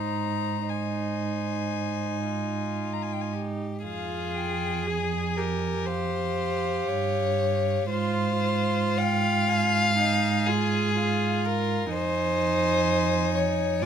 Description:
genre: classical, slow romantic movement for string quartet.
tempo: 54-64 BPM.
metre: 4/4.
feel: rubato.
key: Ab major, F minor from 3.8 s.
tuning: A4 = 440 Hz.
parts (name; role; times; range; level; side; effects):
warm violin; melody; 0.0-13.8 s; F5 to Bb5; -33 LUFS; left 12 dB; none.
rich violin; second line; 0.0-13.9 s; F4 to F5; -28 LUFS; left 3 dB; none.
rich viola; accompaniment; 0.0-13.9 s; Eb4 to Ab4; -32 LUFS; right 4 dB; none.
dark cello; bass; 0.0-13.9 s; F2 to Ab2; -28 LUFS; right 5 dB; none.
room: light reverb.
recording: close, detailed microphones.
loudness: -24 LUFS.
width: side -8 dB against mid.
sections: 0.0-3.8 A section; 3.8-13.9 B section.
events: none.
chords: 0.0 Ab; 3.8 Fm; 7.9 Fm/Ab; 11.9 Fm7.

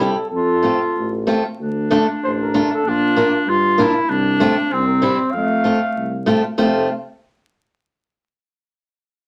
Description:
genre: alpine folk.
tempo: 96 BPM.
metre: 2/4.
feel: straight.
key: F major.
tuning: A4 = 440 Hz.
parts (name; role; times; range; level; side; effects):
mellow flugelhorn; melody; 0.0-6.9 s; F4 to F5; -26 LUFS; equal; none.
warm clarinet; second line; 0.0-6.9 s; A3 to F4; -22 LUFS; equal; none.
fingerpicked swing-style acoustic guitar; accompaniment; 0.0-6.9 s; G3 to F4; -20 LUFS; equal; none.
mellow tuba; bass; 0.0-6.9 s; F1 to G2; -26 LUFS; equal; none.
room: wet small room reverb, RT60 0.5 s.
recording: vinyl crackle.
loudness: -18 LUFS.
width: mono.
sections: 0.0-1.6 A section; 1.6-6.6 B section; 6.6-7.8 C section.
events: none.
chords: 0.3 F; 1.6 Dm; 2.9 Bb; 4.1 F/C; 4.7 C; 5.3 F.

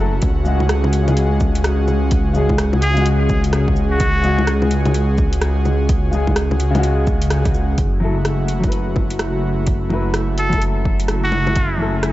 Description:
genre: future garage.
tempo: 127 BPM.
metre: 4/4.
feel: swing 63% on 16ths.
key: F# minor.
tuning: A4 = 439 Hz.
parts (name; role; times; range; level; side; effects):
warm upright piano; accompaniment; 0.0-11.9 s; C#3 to B4; -24 LUFS; left 2 dB; sidechain pumping, low-pass filter, analog delay.
airy breathy pad; sustained chords; 0.0-12.1 s; C#3 to G#5; -22 LUFS; right 1 dB; chorus, sidechain pumping.
dark detuned saw bass; bass; 0.0-12.1 s; F#1 to C#2; -19 LUFS; equal; sidechain pumping.
deep house drum kit; drums; 0.2-12.1 s; bongos, cabasa, hi-hat, rim click; -24 LUFS; left 1 dB; overdrive, studio reverb.
electronic kick drum; drums; 0.2-11.7 s; none; -20 LUFS; equal; overdrive, studio reverb.
trumpet with straight mute; melody; 2.8-4.6, 10.4-11.9 s; F#4 to A4; -23 LUFS; equal; tape echo.
room: light reverb, digital ambience.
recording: cassette tape, nothing above 7.8 kHz.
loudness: -15 LUFS.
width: side -16 dB against mid.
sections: 0.0-7.8 A section; 7.8-12.1 B section.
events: band accent 7.3.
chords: 0.2 C#sus4; 7.8 F#m7.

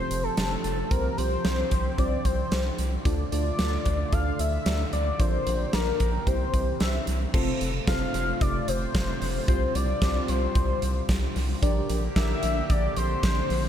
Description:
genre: synth-pop.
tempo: 112 BPM.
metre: 4/4.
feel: straight.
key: F major.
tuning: A4 = 440 Hz.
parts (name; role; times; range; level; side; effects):
octave-doubled lead; melody; 0.0-13.7 s; A4 to F5; -30 LUFS; left 3 dB; chorus, dub echo.
soft electric-piano-like synth keys; accompaniment; 0.0-12.9 s; C4 to D5; -34 LUFS; equal; chorus, phaser, dub echo.
chorused pulse-width pad; sustained chords; 0.0-13.7 s; C3 to G4; -35 LUFS; right 2 dB; none.
round analog bass; bass; 0.0-13.7 s; F1 to D2; -28 LUFS; equal; none.
huge arena drum kit; drums; 0.1-13.6 s; crash cymbal, hi-hat, kick drum, snare drum; -28 LUFS; equal; none.
room: light reverb.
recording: echo-heavy mix.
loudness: -23 LUFS.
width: side -9 dB against mid.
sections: 0.0-7.3 A section; 7.3-13.7 B section.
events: none.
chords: 0.0 Fadd9; 0.9 Csus4; 3.1 Dm; 5.2 Bb6; 6.3 C; 7.3 F; 9.5 Csus4; 11.6 Gm/Bb.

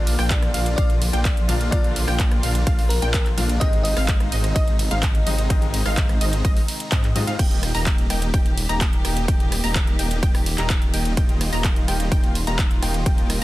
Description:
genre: EDM, festival progressive house.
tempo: 127 BPM.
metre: 4/4.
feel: straight.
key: Eb major.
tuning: A4 = 442 Hz.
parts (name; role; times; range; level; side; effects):
bell-like FM electric piano; melody; 0.0-6.9 s; Bb4 to Eb5; -31 LUFS; left 1 dB; chorus, digital delay.
clear concert grand piano; accompaniment; 0.0-7.4 s; C3 to F4; -33 LUFS; left 5 dB; sidechain pumping, digital delay.
dark studio string section; sustained chords; 0.0-13.4 s; C3 to G4; -33 LUFS; equal; sidechain pumping.
wide unison pluck; arpeggios; 0.0-13.4 s; Eb5 to Bb5; -31 LUFS; equal; sidechain pumping, digital delay.
dense compressed supersaw; riff; 0.0-13.4 s; Ab3 to Bb5; -30 LUFS; equal; cassette tape, sidechain pumping, digital delay.
detuned saw bass; bass; 0.0-13.4 s; Eb1 to Ab2; -24 LUFS; equal; sidechain pumping.
big-room dance drum kit; drums; 0.1-13.4 s; crash cymbal, handclaps, hi-hat, ride cymbal, rim click; -28 LUFS; right 1 dB; overdrive.
electronic kick drum; drums; 0.3-13.2 s; none; -20 LUFS; equal; overdrive.
room: digital ambience.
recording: dense, heavily limited modern master.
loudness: -18 LUFS.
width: side -17 dB against mid.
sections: 0.0-7.4 A section; 7.4-13.4 A section.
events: drop 0.0-7.4, 7.4-13.4.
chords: 0.0 Bb; 3.6 Ab; 7.4 Eb.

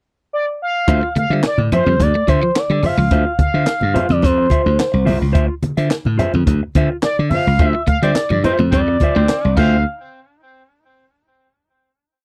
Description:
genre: funk.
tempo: 107 BPM.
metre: 4/4.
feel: straight.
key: D minor.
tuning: A4 = 440 Hz.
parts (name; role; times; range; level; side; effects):
expressive synth lead; melody; 0.3-9.8 s; C5 to F5; -21 LUFS; equal; chorus.
mellow electric guitar; accompaniment; 0.9-9.8 s; F4 to E5; -25 LUFS; equal; none.
slap bass; bass; 0.9-9.8 s; C2 to D3; -19 LUFS; equal; none.
compact cocktail drum kit; drums; 0.9-9.7 s; crash cymbal, handclaps, hi-hat, kick drum, snare drum; -21 LUFS; equal; none.
congas; percussion; 0.9-9.8 s; none; -24 LUFS; equal; none.
electric guitar at the edge of break-up; riff; 1.0-3.1, 7.7-9.7 s; F3 to A3; -24 LUFS; equal; none.
breathy baritone saxophone; second line; 8.0-9.8 s; C4; -29 LUFS; equal; tape echo.
room: little or no reverb.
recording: dry, close 1970s-style studio recording.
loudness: -16 LUFS.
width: mono.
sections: 0.0-0.9 pickup bar; 0.9-9.9 A section; 9.9-12.1 final hit.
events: band accent 7.6-9.9.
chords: 0.0 N.C.; 0.9 Dm9; 9.9 N.C..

